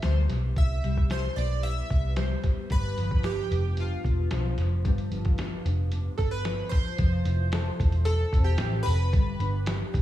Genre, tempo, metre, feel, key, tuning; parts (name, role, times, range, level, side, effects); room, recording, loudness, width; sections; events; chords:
indie pop, bedroom pop; 112 BPM; 4/4; straight; A4 = 440 Hz
chorused retro synth keys; melody; 0.0-9.6 s; F4 to E5; -34 LUFS; right 1 dB; lush chorus, analog delay
nylon-string guitar; accompaniment; 0.0-10.0 s; G2 to A4; -35 LUFS; left 4 dB; ensemble chorus, warbly pitch drift, analog delay
vintage muted picked electric bass; bass; 0.0-10.0 s; E1 to D2; -26 LUFS; equal
lo-fi sampler-style drum kit; drums; 0.0-10.0 s; hi-hat, kick drum, snare drum; -28 LUFS; equal
little or no reverb; echo-heavy mix, small room ambience; -24 LUFS; side -13 dB against mid
0.0-7.0 A section; 7.0-10.0 B section
0.0 Cmaj7; 2.7 G7; 7.0 Fmaj7; 9.1 G